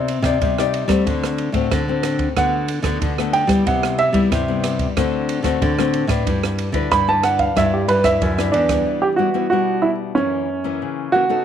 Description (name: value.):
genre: samba and choro.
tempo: 92 BPM.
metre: 4/4.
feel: straight.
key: G major.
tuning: A4 = 440 Hz.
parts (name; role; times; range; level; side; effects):
nylon-string guitar; accompaniment; 0.0-11.4 s; F#2 to D5; -22 LUFS; left 10 dB; none.
nylon-string guitar; bass; 0.0-8.8 s; E2 to G3; -21 LUFS; equal; none.
open jazz drum kit; drums; 0.1-8.8 s; kick drum, ride cymbal, rim click; -24 LUFS; right 3 dB; none.
warm baby grand piano; melody; 2.4-11.4 s; C#4 to B5; -18 LUFS; right 4 dB; none.
room: light reverb, studio reverb.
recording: 1960s-style stereo.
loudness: -16 LUFS.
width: side -9 dB against mid.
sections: 0.0-8.9 A section; 8.9-11.4 B section.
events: grand piano solo 0.0-8.9.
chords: 0.0 Cmadd9; 1.1 D7; 2.4 Gmaj9/D; 3.7 Cmaj7; 5.0 D7; 6.3 G6; 8.9 Em; 10.2 F#7.